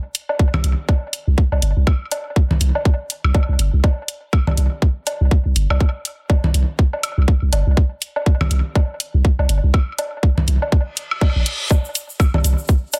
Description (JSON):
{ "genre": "minimal techno", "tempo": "122 BPM", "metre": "4/4", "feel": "swing 59% on 16ths", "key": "unclear", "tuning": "A4 = 440 Hz", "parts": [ { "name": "electronic hi-hat", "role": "drums", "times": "0.1-13.0 s", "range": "none", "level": "-25 LUFS", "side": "equal", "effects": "none" }, { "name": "woodblock and congas", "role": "percussion", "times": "0.3-13.0 s", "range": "none", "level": "-28 LUFS", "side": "equal", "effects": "tape echo" }, { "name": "electronic kick drum", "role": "drums", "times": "0.4-12.8 s", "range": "none", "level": "-17 LUFS", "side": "equal", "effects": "none" }, { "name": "punchy sub bass", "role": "bass", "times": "0.5-12.6 s", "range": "G1 to C2", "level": "-18 LUFS", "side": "equal", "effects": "sidechain pumping" }, { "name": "reverse cymbal", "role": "sound effects", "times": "11.0-11.7 s", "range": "none", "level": "-29 LUFS", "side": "equal", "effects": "none" }, { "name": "egg shaker", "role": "percussion", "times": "11.7-13.0 s", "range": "none", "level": "-33 LUFS", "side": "equal", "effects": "tape echo" } ], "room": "digital ambience", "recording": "echo-heavy mix", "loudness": "-18 LUFS", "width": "mono", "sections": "0.0-13.0 A section", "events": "reverse cymbal 11.0-11.7", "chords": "none" }